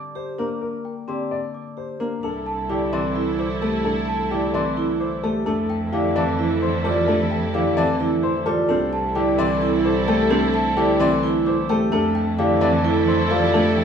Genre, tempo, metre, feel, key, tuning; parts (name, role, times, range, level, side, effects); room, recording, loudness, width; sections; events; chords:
classical, minimalist pattern music; 260 BPM (eighths); 7/8; straight; C major; A4 = 440 Hz
Celtic harp; accompaniment; 0.0-13.8 s; D3 to C4; -24 LUFS; equal
large celesta; arpeggios; 0.0-13.8 s; F5 to D6; -29 LUFS; left 2 dB
warm grand piano; melody; 0.2-13.8 s; G4 to D5; -27 LUFS; left 5 dB
vibraphone with medium hard mallets; arpeggios; 0.2-13.8 s; C4 to G4; -25 LUFS; right 4 dB
mellow clarinet; second line; 2.2-13.8 s; A4; -31 LUFS; right 1 dB
rich studio string section; sustained chords; 2.2-13.8 s; E4 to A4; -31 LUFS; left 1 dB
rich cello; bass; 2.2-13.8 s; C2 to F2; -27 LUFS; right 3 dB
moderate large studio reverb, RT60 1.0 s; heard from further back in the room; -18 LUFS; side -7 dB against mid
0.0-2.2 A section; 2.2-13.8 B section
0.0 Gm; 2.2 C6; 5.5 Fmaj9; 8.7 C6; 11.9 Fmaj9